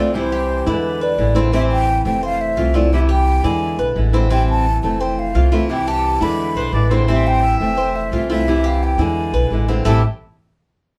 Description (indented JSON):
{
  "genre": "latin",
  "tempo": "173 BPM",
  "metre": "4/4",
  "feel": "straight",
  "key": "A minor",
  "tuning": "A4 = 439 Hz",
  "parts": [
    { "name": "breathy mellow concert flute", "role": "melody", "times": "0.0-10.0 s", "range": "B4 to B5", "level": "-23 LUFS", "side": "equal", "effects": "none" },
    { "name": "flamenco guitar", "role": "accompaniment", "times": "0.0-10.0 s", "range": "A2 to F4", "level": "-24 LUFS", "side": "equal", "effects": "none" },
    { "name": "Cuban tres", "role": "arpeggios", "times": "0.0-10.0 s", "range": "A3 to D5", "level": "-26 LUFS", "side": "equal", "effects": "none" },
    { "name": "upright bass", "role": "bass", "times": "0.0-10.0 s", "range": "F1 to E2", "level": "-21 LUFS", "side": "equal", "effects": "none" },
    { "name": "clear trumpet", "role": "second line", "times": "6.6-10.0 s", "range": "C5 to E5", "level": "-29 LUFS", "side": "equal", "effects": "none" }
  ],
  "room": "moderate studio ambience, RT60 0.5 s",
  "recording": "band playing live in one room",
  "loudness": "-17 LUFS",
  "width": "mono",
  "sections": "0.0-9.9 A section; 9.9-11.0 B section",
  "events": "none",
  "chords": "0.1 Cmaj7; 0.8 E7; 1.5 Am7; 2.2 Fmaj7; 2.9 Cmaj7; 3.6 E7; 4.3 Am7; 5.0 Fmaj7; 5.7 Cmaj7; 6.4 E7; 7.1 Am7; 7.8 Fmaj7; 8.5 Cmaj7; 9.2 E7; 9.9 A7(no3)"
}